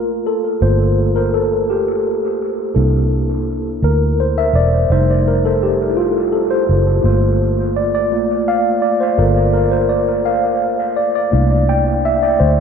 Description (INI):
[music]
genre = slow six-eight R&B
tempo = 56 BPM (dotted quarters)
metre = 6/8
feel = straight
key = G minor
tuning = A4 = 440 Hz
[part]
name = mellow tine electric piano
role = accompaniment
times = 0.0-12.6 s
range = G3 to G5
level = -15 LUFS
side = equal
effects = medium stereo tremolo, dub echo
[part]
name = vintage muted fingered electric bass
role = bass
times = 0.0-12.6 s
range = E1 to D2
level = -16 LUFS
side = equal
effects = none
[sound]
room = light reverb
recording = echo-heavy mix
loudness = -13 LUFS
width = side -7 dB against mid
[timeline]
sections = 0.0-12.6 A section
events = tine electric piano solo 0.0-12.6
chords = 0.0 Gm9; 2.7 C13; 4.9 F7; 7.0 Gm9; 11.3 C13